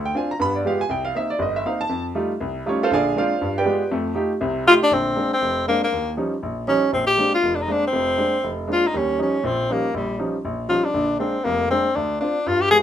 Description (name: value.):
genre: jazz.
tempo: 239 BPM.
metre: 4/4.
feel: swing 60% on 8ths.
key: Bb mixolydian.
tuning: A4 = 440 Hz.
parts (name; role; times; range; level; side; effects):
clear grand piano; accompaniment; 0.0-12.8 s; F1 to B5; -22 LUFS; right 1 dB; none.
breathy tenor saxophone; melody; 4.7-12.8 s; G3 to Ab4; -19 LUFS; left 1 dB; none.
room: moderate studio reverb, RT60 0.5 s.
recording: minimal, uncompressed stereo recording.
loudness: -19 LUFS.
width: side -10 dB against mid.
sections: 0.0-4.9 A section; 4.9-12.8 B section.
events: none.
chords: 0.4 G7b9; 0.9 Cm7; 1.9 F9; 2.9 Bb9; 3.4 G7b9; 3.9 F9; 4.9 Bb9; 5.9 Eb9; 6.9 Bb9; 8.9 Eb9; 10.9 Bb9; 11.9 Dm7.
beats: 0.14 0.39 0.64 | 0.89 1.14 1.39 1.64 | 1.90 2.15 2.40 2.65 | 2.90 3.15 3.40 3.65 | 3.90 4.16 4.41 4.66 | 4.91 5.16 5.41 5.66 | 5.92 6.17 6.42 6.67 | 6.92 7.17 7.42 7.67 | 7.93 8.18 8.43 8.68 | 8.93 9.18 9.43 9.69 | 9.94 10.19 10.44 10.69 | 10.94 11.19 11.44 11.70 | 11.95 12.20 12.45 12.70.